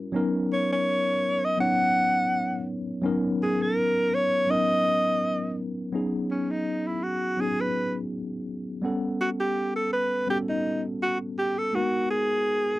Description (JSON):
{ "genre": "soul", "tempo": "83 BPM", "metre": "4/4", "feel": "swing 54% on 16ths", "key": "B major", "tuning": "A4 = 441 Hz", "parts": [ { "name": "tine electric piano", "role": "accompaniment", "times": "0.0-12.8 s", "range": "F#3 to F#5", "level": "-28 LUFS", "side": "left 1 dB", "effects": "medium stereo tremolo" }, { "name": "breathy alto saxophone", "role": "melody", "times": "0.5-12.8 s", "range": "C#4 to F#5", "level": "-24 LUFS", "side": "equal", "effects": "none" } ], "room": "little or no reverb", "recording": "dry, close 1970s-style studio recording", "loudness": "-24 LUFS", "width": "side -17 dB against mid", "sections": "0.0-5.9 A section; 5.9-12.8 B section", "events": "alto saxophone solo 5.9-12.8", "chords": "0.1 Bmaj9; 5.9 B69; 8.8 A13; 11.7 G#m9" }